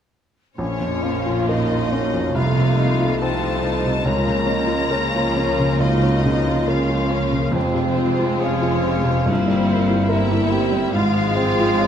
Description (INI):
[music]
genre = classical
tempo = 69 BPM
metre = 4/4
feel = uneven beats, rubato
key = Bb minor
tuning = A4 = 436 Hz
[part]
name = clear baby grand piano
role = melody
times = 0.6-11.9 s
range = Bb1 to Bb4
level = -21 LUFS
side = left 1 dB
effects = none
[part]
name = warm studio violin section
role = melody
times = 0.6-11.9 s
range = C5 to Bb5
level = -28 LUFS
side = left 4 dB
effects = none
[part]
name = clear clarinet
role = second line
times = 0.6-11.9 s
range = C4 to Bb4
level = -30 LUFS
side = equal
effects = none
[part]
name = mellow hollow small flute group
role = second line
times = 0.6-11.9 s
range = E4 to Db5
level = -30 LUFS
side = left 2 dB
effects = none
[part]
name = rich chamber violin section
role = second line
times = 0.6-11.9 s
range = C4 to F4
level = -29 LUFS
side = left 4 dB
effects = none
[part]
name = mellow bassoon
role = accompaniment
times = 0.6-11.9 s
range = A3 to G4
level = -27 LUFS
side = right 1 dB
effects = none
[part]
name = warm studio viola section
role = accompaniment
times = 0.6-11.9 s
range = F3 to Bb3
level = -29 LUFS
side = right 4 dB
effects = none
[part]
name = clear French horn section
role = sustained chords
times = 0.6-11.9 s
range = Ab3 to F4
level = -29 LUFS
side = left 4 dB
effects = none
[part]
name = dark chamber double bass section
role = bass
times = 0.6-11.9 s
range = F1 to Db2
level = -28 LUFS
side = right 5 dB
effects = none
[part]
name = dark studio cello section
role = bass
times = 0.6-11.9 s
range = F2 to Db3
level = -28 LUFS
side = right 3 dB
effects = none
[part]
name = mellow tuba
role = bass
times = 0.6-11.9 s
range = F1 to Db2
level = -30 LUFS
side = right 5 dB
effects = none
[sound]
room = moderate concert hall reverb, RT60 2.2 s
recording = close, detailed microphones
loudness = -17 LUFS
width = side -8 dB against mid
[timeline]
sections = 0.6-11.9 A section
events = none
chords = 0.6 Bbm; 2.4 F7/C; 4.1 Bbm/Db; 7.6 Fm; 9.3 C7/G; 11.0 Fm/Ab